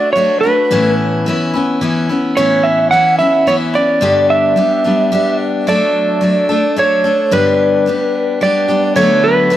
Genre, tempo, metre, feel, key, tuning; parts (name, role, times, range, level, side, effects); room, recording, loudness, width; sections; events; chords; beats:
rock; 109 BPM; 3/4; straight; A mixolydian; A4 = 439 Hz
electric slide guitar; melody; 0.0-9.6 s; B4 to F#5; -13 LUFS; right 2 dB; tape echo
picked steel-string acoustic guitar; accompaniment; 0.0-9.6 s; G2 to A4; -14 LUFS; left 2 dB
moderate large studio reverb, RT60 0.9 s; -11 LUFS; side -12 dB against mid
0.0-9.0 A section
0.0 D/F#; 0.7 Aadd9; 4.0 G; 5.7 D/F#; 7.3 G; 9.0 D6
0.16 | 0.71 1.26 1.81 | 2.37 2.92 3.47 | 4.02 4.57 5.12 | 5.67 6.22 6.77 | 7.32 7.87 8.42 | 8.96 9.51